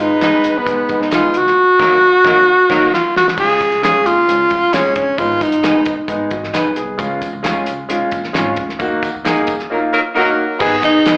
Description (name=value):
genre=uptempo 1960s-style soul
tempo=133 BPM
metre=4/4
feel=straight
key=G# dorian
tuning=A4 = 438 Hz
part: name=breathy tenor saxophone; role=melody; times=0.0-6.1, 10.8-11.2 s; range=B3 to G#4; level=-11 LUFS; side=equal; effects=none
part: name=warm horn section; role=second line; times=0.0-2.8, 9.7-11.0 s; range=D#3 to B4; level=-19 LUFS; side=equal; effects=none
part: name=warm grand piano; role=accompaniment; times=0.0-11.2 s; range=F#3 to D#5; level=-19 LUFS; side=equal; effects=slapback echo
part: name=upright bass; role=bass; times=0.0-11.0 s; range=G1 to F#2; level=-32 LUFS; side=equal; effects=none
part: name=electric guitar through a small old amp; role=stabs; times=0.2-11.2 s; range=C#4 to D#5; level=-22 LUFS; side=right 1 dB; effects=slapback echo
part: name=cloth-damped thuddy drum kit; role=drums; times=0.2-11.2 s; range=crash cymbal, hi-hat, kick drum, snare drum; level=-23 LUFS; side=equal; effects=none
part: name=handclaps and tambourine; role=percussion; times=0.2-11.2 s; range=none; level=-29 LUFS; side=equal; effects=none
room=moderate club reverb, RT60 0.7 s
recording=live gig heard through the venue's PA, club reverb, AM radio sound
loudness=-12 LUFS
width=side -30 dB against mid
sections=0.0-3.4 A section; 3.4-10.6 B section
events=band accent 1.6-3.4, 8.8-10.6; drum fill 2.5-3.4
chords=0.0 G#m; 1.6 D#m; 3.4 C#; 5.2 G#m; 7.0 C#; 8.8 D#m; 10.6 G#m